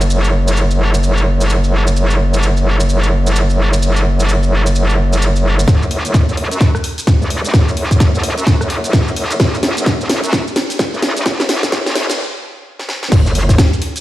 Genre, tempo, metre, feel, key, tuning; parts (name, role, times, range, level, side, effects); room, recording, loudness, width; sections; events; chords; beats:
bass house; 129 BPM; 4/4; swing 61% on 16ths; A4 = 440 Hz
metallic wobble bass; bass; 0.0-13.6 s; E1 to F#2; -14 LUFS; equal; chorus, tube saturation, sidechain pumping, high-pass filter
garage drum kit; drums; 0.0-14.0 s; crash cymbal, hi-hat, rim click, shaker, snare drum; -20 LUFS; equal
electronic kick drum; drums; 5.7-13.7 s; -12 LUFS; equal
light reverb; played on a big sound system in a bare room, large studio reverb, high-pass filter; -12 LUFS; side -15 dB against mid
0.0-5.7 A section; 5.7-13.1 B section
build-up 5.7-13.1; drum fill 5.7-12.2, 12.8-13.1; filter sweep 5.7-13.1; stop 12.2-13.1
| 0.10 0.56 1.02 1.49 | 1.96 2.42 2.89 3.35 | 3.82 4.28 4.75 5.21 | 5.68 6.14 6.61 7.07 | 7.54 8.00 8.47 8.93 | 9.40 9.86 10.33 10.79 | 11.26 11.72 12.19 12.65 | 13.12 13.58